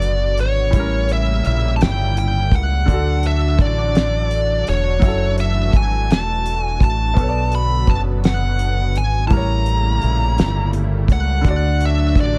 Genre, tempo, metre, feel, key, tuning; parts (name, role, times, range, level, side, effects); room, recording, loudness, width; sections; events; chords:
slow six-eight R&B; 56 BPM (dotted quarters); 6/8; straight; A4 = 440 Hz
bluesy overdriven lead guitar; melody; 0.0-12.4 s; C#5 to B5; -25 LUFS; equal; distortion
clear grand piano; accompaniment; 0.0-12.4 s; A2 to D5; -29 LUFS; equal
warm analog pad; sustained chords; 0.0-12.4 s; C#3 to F#4; -31 LUFS; equal; chorus
deep dub fingered electric bass; bass; 0.0-12.4 s; E1 to D2; -21 LUFS; equal
cloth-damped thuddy drum kit; drums; 0.0-12.3 s; hi-hat, kick drum, snare drum; -19 LUFS; equal
little or no reverb; -18 LUFS; mono
0.0-12.4 A section
0.0 Bm7; 0.7 A7b9; 2.9 D; 5.0 F#m9; 7.2 Bm7; 9.3 A7b9; 11.4 D